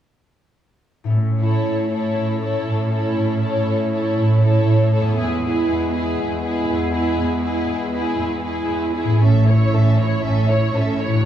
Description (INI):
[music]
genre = cinematic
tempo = 119 BPM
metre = 4/4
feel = straight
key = A major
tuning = A4 = 440 Hz
[part]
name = concert harp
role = arpeggios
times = 1.0-11.3 s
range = E2 to A4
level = -24 LUFS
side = left 2 dB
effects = none
[part]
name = clear French horn section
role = sustained chords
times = 1.1-8.9 s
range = G#3 to C#4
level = -26 LUFS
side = left 3 dB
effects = none
[part]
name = warm symphonic cello section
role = bass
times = 1.1-11.2 s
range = E2 to A2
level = -21 LUFS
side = right 2 dB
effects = none
[part]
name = warm studio violin section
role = melody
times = 1.4-11.3 s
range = B4 to E5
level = -29 LUFS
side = left 3 dB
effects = none
[part]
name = warm symphonic violin section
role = second line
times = 1.4-11.3 s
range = G#4 to C#5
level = -28 LUFS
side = left 2 dB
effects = none
[part]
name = rich symphonic viola section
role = accompaniment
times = 1.4-11.3 s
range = C#4 to E4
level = -24 LUFS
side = right 3 dB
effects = none
[part]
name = rich symphonic double bass section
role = bass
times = 9.2-11.2 s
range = A1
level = -22 LUFS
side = right 2 dB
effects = none
[sound]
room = moderate recital hall reverb, RT60 1.4 s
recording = recorded in a church or concert hall, small room ambience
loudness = -17 LUFS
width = side -10 dB against mid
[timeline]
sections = 1.1-9.2 A section; 9.2-11.3 B section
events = build-up 9.2-11.3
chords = 1.1 A; 5.2 E; 9.2 A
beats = | 1.14 1.65 2.16 2.66 | 3.17 3.67 4.17 4.67 | 5.18 5.68 6.17 6.67 | 7.17 7.68 8.19 8.70 | 9.22 9.73 10.24 10.75